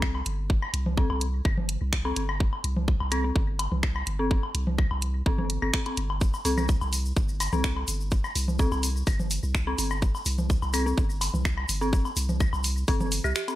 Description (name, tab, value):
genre	minimal techno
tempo	126 BPM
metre	4/4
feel	straight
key	unclear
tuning	A4 = 440 Hz
part	dark detuned synth bell	riff	0.0-13.6 s	C4 to G4	-31 LUFS	left 1 dB	chorus, tremolo, sidechain pumping, tape echo
part	punchy sub bass	bass	0.0-13.3 s	G1 to C2	-28 LUFS	equal	sidechain pumping
part	electronic kick drum	drums	0.0-13.0 s	none	-25 LUFS	equal	studio reverb
part	garage drum kit	drums	0.0-13.6 s	finger snaps, hi-hat	-31 LUFS	right 1 dB	studio reverb
part	woodblock, claves and congas	percussion	0.1-13.6 s	none	-33 LUFS	left 1 dB	studio reverb, tape echo
part	tube shaker	percussion	6.2-13.6 s	none	-37 LUFS	left 2 dB	none
room	digital ambience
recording	none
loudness	-24 LUFS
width	side -15 dB against mid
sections	0.0-13.6 A section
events	break 13.4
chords	0.0 C5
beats	0.02 | 0.50 0.97 1.45 1.93 | 2.40 2.88 3.35 3.83 | 4.31 4.78 5.26 5.74 | 6.21 6.69 7.17 7.64 | 8.12 8.59 9.07 9.55 | 10.02 10.50 10.97 11.45 | 11.93 12.40 12.88 13.36